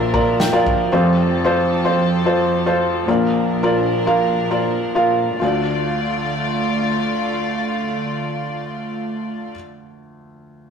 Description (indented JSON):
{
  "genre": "piano-driven pop",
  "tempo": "97-114 BPM",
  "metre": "4/4",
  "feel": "straight",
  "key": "D minor",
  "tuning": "A4 = 440 Hz",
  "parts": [
    { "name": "felt-muted upright piano", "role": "accompaniment", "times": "0.0-10.7 s", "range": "F1 to Bb5", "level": "-18 LUFS", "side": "equal", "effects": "none" },
    { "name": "warm studio string section", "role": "sustained chords", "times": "0.0-9.5 s", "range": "F2 to D5", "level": "-21 LUFS", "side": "right 1 dB", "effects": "none" },
    { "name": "natural country drum kit", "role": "drums", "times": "0.1-0.8 s", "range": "kick drum, snare drum", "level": "-22 LUFS", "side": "left 1 dB", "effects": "none" }
  ],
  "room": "moderate stone room reverb, RT60 1.1 s",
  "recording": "rough rehearsal-room recording, warm saturation",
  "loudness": "-16 LUFS",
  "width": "side -7 dB against mid",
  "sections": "0.0-5.4 A section; 5.4-10.4 B section",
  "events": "felt piano fill 0.0-0.9; slowing down 0.9-5.4",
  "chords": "0.0 Bb; 0.9 F; 3.1 Bb; 5.4 Dm"
}